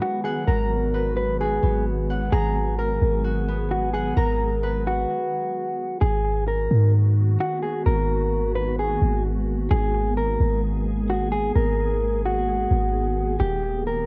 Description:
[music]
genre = hip hop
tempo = 130 BPM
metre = 4/4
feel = half-time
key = G# minor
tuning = A4 = 440 Hz
[part]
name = mellow electric guitar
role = melody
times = 0.0-14.1 s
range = F#4 to B4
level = -28 LUFS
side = equal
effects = low-pass filter, cassette tape, analog delay
[part]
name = glassy FM pad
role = sustained chords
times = 0.0-14.1 s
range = D#3 to G#4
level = -32 LUFS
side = equal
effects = ensemble chorus, built-in reverb, cassette tape
[part]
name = concert harp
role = arpeggios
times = 0.0-6.7 s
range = B3 to A#5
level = -34 LUFS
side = equal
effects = low-pass filter, cassette tape, analog delay
[part]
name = clean 808-style bass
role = bass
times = 0.5-14.1 s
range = D#1 to G#2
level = -25 LUFS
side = equal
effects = none
[sound]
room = digital ambience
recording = home recording on cassette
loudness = -23 LUFS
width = mono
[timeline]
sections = 0.0-6.0 A section; 6.0-14.1 B section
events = stop 5.1-6.0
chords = 0.0 G#m9; 13.4 D#7

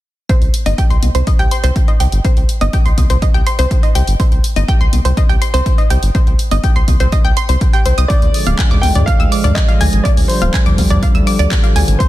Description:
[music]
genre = progressive house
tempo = 123 BPM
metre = 4/4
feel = straight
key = C minor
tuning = A4 = 438 Hz
[part]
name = analog pluck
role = arpeggios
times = 0.3-12.1 s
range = C5 to E6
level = -20 LUFS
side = equal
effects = chorus, sidechain pumping, tape echo
[part]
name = electronic kick drum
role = drums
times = 0.3-12.1 s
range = none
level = -13 LUFS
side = equal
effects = small room ambience
[part]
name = house drum kit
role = drums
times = 0.3-12.1 s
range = handclaps, hi-hat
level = -25 LUFS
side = left 1 dB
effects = small room ambience
[part]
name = round analog bass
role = bass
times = 0.4-12.0 s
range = D1 to D2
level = -14 LUFS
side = equal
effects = sidechain pumping
[part]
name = electronic congas and toms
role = percussion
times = 0.7-11.0 s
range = none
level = -24 LUFS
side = left 3 dB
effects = none
[part]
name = warm grand piano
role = melody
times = 8.1-12.1 s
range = C5 to G5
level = -22 LUFS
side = equal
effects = sidechain pumping, tape echo
[part]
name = warm analog pad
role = sustained chords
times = 8.1-12.1 s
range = D3 to C4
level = -19 LUFS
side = right 1 dB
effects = chorus, sidechain pumping
[sound]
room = digital ambience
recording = dense, heavily limited modern master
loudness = -11 LUFS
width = side -15 dB against mid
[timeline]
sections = 0.3-12.1 A section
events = none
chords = 0.3 Cm; 8.1 Ddim

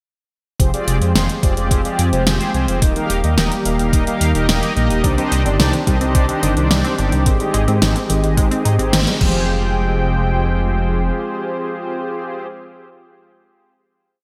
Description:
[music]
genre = synthwave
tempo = 108 BPM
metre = 4/4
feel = straight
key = F dorian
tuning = A4 = 440 Hz
[part]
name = warm analog pad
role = sustained chords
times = 0.6-12.5 s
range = Eb3 to G5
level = -26 LUFS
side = equal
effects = chorus, sidechain pumping
[part]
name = mellow synth brass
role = stabs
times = 0.6-12.5 s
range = Bb3 to F5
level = -24 LUFS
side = equal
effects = chorus, delay
[part]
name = dark detuned saw bass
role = bass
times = 0.6-11.1 s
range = Eb1 to Ab2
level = -21 LUFS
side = equal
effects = none
[part]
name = electronic kick drum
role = drums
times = 0.6-9.3 s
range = none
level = -19 LUFS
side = equal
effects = none
[part]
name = pop drum kit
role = drums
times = 0.6-9.3 s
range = crash cymbal, hi-hat, snare drum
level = -23 LUFS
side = equal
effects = none
[part]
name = analog pluck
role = arpeggios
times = 5.0-9.7 s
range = D3 to Eb4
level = -27 LUFS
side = equal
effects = chorus, delay
[sound]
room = moderate lush hall reverb, RT60 2.2 s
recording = bright 1980s-style digital production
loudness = -17 LUFS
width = mono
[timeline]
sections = 0.6-9.5 verse; 9.5-11.7 final hit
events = band accent 8.9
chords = 0.6 Fmadd9; 2.8 Eb; 5.0 Cmadd9; 7.3 Abmaj7; 9.2 Fmadd9

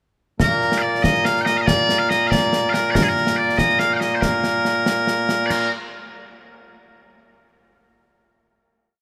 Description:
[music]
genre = scottish traditional, Scottish pipe music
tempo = 94 BPM (dotted quarters)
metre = 6/8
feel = straight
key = Bb major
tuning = A4 = 439 Hz
[part]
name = loud bright bagpipes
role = melody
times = 0.4-5.7 s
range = Bb2 to G5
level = -20 LUFS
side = equal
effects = none
[part]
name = concert snare drum, concert bass drum and clash cymbals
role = drums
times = 0.4-5.6 s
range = none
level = -25 LUFS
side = equal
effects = none
[sound]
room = light reverb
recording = none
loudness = -19 LUFS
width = mono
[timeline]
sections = 0.4-5.5 A section; 5.5-6.8 final note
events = none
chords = none

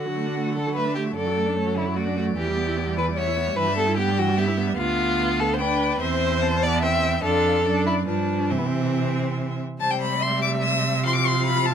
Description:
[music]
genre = quick classical-period movement for string quartet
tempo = 147 BPM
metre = 3/4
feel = rubato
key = C major from 4.8 s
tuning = A4 = 439 Hz
[part]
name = rich violin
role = melody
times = 0.0-11.7 s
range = B4 to E6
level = -28 LUFS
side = left 6 dB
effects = none
[part]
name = rich violin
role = second line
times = 0.0-11.7 s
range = B3 to F5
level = -25 LUFS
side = left 1 dB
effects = none
[part]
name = rich viola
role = accompaniment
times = 0.0-11.7 s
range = D3 to E4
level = -28 LUFS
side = right 2 dB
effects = none
[part]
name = rich cello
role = bass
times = 0.0-11.7 s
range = D2 to D3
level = -25 LUFS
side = right 4 dB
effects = none
[sound]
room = light reverb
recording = minimal, uncompressed stereo recording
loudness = -20 LUFS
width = side -8 dB against mid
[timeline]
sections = 0.0-9.8 A section; 9.8-11.7 B section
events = none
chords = 0.0 D; 1.2 D/F#; 2.4 Em; 3.6 Em/G; 4.8 G7/D; 6.0 C/E; 7.2 Dm/F; 7.7 D/F#; 8.1 G7; 8.5 C; 11.1 F5/C

